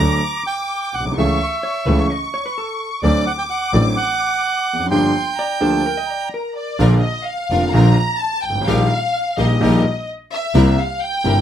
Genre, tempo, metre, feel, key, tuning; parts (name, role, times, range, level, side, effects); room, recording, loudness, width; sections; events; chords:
tango; 128 BPM; 4/4; rubato; Bb major from 6.8 s; A4 = 444 Hz
bandoneon; melody; 0.0-6.3 s; D5 to Bb5; -21 LUFS; right 4 dB
warm studio violin section; second line; 0.0-11.4 s; D5 to D6; -23 LUFS; left 2 dB
clear concert grand piano; accompaniment; 0.0-11.4 s; F1 to A4; -17 LUFS; equal
clear double bass; bass; 0.0-3.9, 6.8-11.4 s; F1 to D2; -18 LUFS; equal
vintage hollow-body jazz guitar; second line; 1.6-6.8 s; A4 to Eb5; -28 LUFS; left 2 dB
bright studio string section; stabs; 6.8-11.4 s; C4 to Bb4; -25 LUFS; left 3 dB
light reverb; close, detailed microphones; -16 LUFS; side -10 dB against mid
0.0-6.8 A section; 6.8-11.4 B section
violin section solo 6.8-11.4
0.0 D; 1.2 A/C#; 3.0 D7; 4.9 Gm7; 6.8 Bb; 8.7 Eb/Bb; 10.5 C7